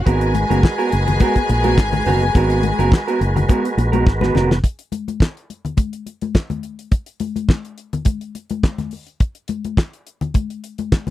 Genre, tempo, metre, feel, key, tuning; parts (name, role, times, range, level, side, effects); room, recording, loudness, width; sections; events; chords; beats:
disco; 105 BPM; 4/4; straight; A4 = 440 Hz
clear studio string section; second line; 0.0-4.3 s; G#4 to G#5; -24 LUFS; left 2 dB; slapback echo
overdriven tonewheel organ; sustained chords; 0.0-4.6 s; G#3 to B4; -25 LUFS; right 2 dB; chorus vibrato, stopped rotary speaker
electric guitar through a small old amp; accompaniment; 0.1-4.5 s; B3 to B4; -20 LUFS; right 4 dB
fingered electric bass; bass; 0.1-4.6 s; E#1 to A#1; -19 LUFS; equal
damped 70s drum kit; drums; 0.1-11.1 s; handclaps, hi-hat, kick drum, snare drum; -15 LUFS; equal
congas; percussion; 0.3-11.1 s; -25 LUFS; left 6 dB
little or no reverb; dry, close 1970s-style studio recording; -16 LUFS; side -14 dB against mid
0.0-4.6 A section; 4.6-11.1 B section
drum fill 4.1-4.6
0.1 G#m9; 4.6 N.C.
| 0.07 0.64 1.21 1.78 | 2.35 2.92 3.49 4.06 | 4.63 5.20 5.78 6.35 | 6.92 7.49 8.06 8.63 | 9.21 9.78 10.35 10.92